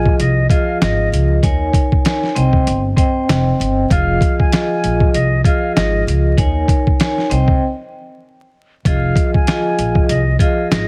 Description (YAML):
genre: hip hop, boom-bap hip-hop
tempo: 97 BPM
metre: 4/4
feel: swing 57% on 16ths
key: F minor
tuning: A4 = 440 Hz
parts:
  - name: jazz flute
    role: melody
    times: 0.0-10.9 s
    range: Eb5 to Ab5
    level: -25 LUFS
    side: equal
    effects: high-pass filter, low-pass filter, delay
  - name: vibraphone with hard mallets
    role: accompaniment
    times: 0.0-10.9 s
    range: F3 to Ab5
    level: -21 LUFS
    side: equal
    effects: high-pass filter, low-pass filter
  - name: upright bass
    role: bass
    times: 0.0-10.9 s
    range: F1 to Eb2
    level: -20 LUFS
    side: equal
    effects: none
  - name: boom bap sampler-style drum kit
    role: drums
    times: 0.1-10.9 s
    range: hi-hat, kick drum, snare drum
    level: -18 LUFS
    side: equal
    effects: vintage 12-bit sampler grit
room: light reverb, small room ambience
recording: heavily compressed radio sound, vinyl crackle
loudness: -15 LUFS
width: mono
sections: 0.0-8.9 A section; 8.9-10.9 A section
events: break 7.6-8.9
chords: 0.0 Fm7; 1.4 Eb7sus4; 2.4 Cm; 3.9 Fm7; 6.4 Eb7sus4; 7.3 Cm; 8.9 Fm7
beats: 0.19 0.81 | 1.43 2.05 2.67 3.29 | 3.90 4.52 5.14 5.76 | 6.38 7.00 7.62 8.23 | 8.85 9.47 10.09 10.71